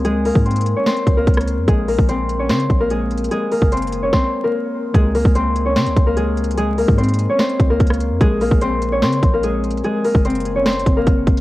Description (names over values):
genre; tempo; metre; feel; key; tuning
hip hop, trap; 147 BPM; 4/4; half-time; unclear; A4 = 440 Hz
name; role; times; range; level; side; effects
concert harp; melody; 0.0-11.4 s; Ab3 to Db5; -18 LUFS; left 1 dB; low-pass filter, cassette tape, tape echo
warm 808-style bass; bass; 0.0-11.4 s; Gb1 to Db3; -21 LUFS; equal; none
trap drum kit; drums; 0.0-11.4 s; hi-hat, kick drum, rim click, snare drum; -16 LUFS; equal; overdrive, cassette tape
room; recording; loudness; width
digital ambience; home recording on cassette, vinyl crackle; -15 LUFS; side -17 dB against mid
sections
0.0-4.9 A section; 4.9-11.4 B section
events
none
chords
0.0 Db5; 1.7 Bb7(no3); 3.3 Gbadd9; 4.9 Db5; 8.2 Bb7(no3); 9.8 Gbadd9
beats
| 0.05 0.45 0.86 1.27 | 1.68 2.09 2.50 2.90 | 3.31 3.72 4.13 4.54 | 4.94 5.35 5.76 6.17 | 6.58 6.98 7.39 7.80 | 8.21 8.62 9.03 9.43 | 9.84 10.25 10.66 11.07